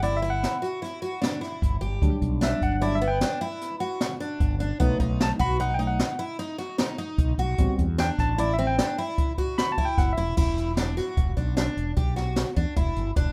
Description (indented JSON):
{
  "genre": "progressive instrumental, band music in an uneven meter",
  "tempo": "151 BPM",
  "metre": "7/4",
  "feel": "straight",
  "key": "E minor",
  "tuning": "A4 = 443 Hz",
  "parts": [
    { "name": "barky tine electric piano", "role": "accompaniment", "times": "0.0-10.4 s", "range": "F#3 to B5", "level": "-30 LUFS", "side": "equal", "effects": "overdrive" },
    { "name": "picked twelve-string acoustic guitar", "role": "arpeggios", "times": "0.0-13.3 s", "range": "B3 to G4", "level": "-32 LUFS", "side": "equal", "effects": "tape echo" },
    { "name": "mellow fretless electric bass", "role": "bass", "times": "0.0-13.3 s", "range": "E1 to E2", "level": "-30 LUFS", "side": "equal", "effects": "none" },
    { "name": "jazz brush drum kit", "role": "drums", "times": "0.0-13.3 s", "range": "crash cymbal, hi-hat, kick drum, snare drum", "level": "-29 LUFS", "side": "equal", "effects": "none" }
  ],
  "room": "moderate studio reverb, RT60 0.5 s",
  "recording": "rough home demo mix",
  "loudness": "-26 LUFS",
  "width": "mono",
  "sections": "0.0-10.4 A section; 10.4-13.3 B section",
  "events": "tine electric piano solo 0.0-10.4",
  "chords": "0.0 Em9/G; 4.8 B7; 7.6 Am7; 10.4 E7sus2"
}